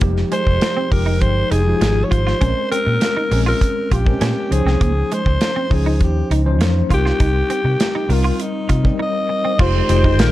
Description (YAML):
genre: polished 1980s jazz-funk pop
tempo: 100 BPM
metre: 4/4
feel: straight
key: F minor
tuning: A4 = 442 Hz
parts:
  - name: tine electric piano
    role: accompaniment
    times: 0.0-10.3 s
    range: E3 to Eb5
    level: -23 LUFS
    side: left 2 dB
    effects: overdrive, fast stereo tremolo, lush chorus
  - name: semi-hollow electric guitar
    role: riff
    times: 0.0-10.2 s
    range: Ab3 to F4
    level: -27 LUFS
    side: right 4 dB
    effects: ensemble chorus
  - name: vintage muted fingered electric bass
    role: bass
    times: 0.0-10.3 s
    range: F1 to C3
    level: -18 LUFS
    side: equal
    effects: none
  - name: modern studio drum kit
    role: drums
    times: 0.0-10.3 s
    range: crash cymbal, hi-hat, kick drum, snare drum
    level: -19 LUFS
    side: equal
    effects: none
  - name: breathy alto saxophone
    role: melody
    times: 0.3-10.3 s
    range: Eb4 to Eb5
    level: -21 LUFS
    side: left 1 dB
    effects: none
  - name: phased string machine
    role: sustained chords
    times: 9.6-10.3 s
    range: Eb3 to G5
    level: -24 LUFS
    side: left 4 dB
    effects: ensemble chorus, phaser
room: studio reverb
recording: dark, warm production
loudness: -15 LUFS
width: side -15 dB against mid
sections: 0.0-9.6 A section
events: none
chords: 0.0 Fm9; 2.4 Bbm9; 4.5 Dbmaj9; 6.9 Cm7; 9.6 Fm9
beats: | 0.02 0.62 1.22 1.81 | 2.41 3.01 3.61 4.21 | 4.81 5.41 6.00 6.60 | 7.20 7.80 8.40 9.00 | 9.59 10.19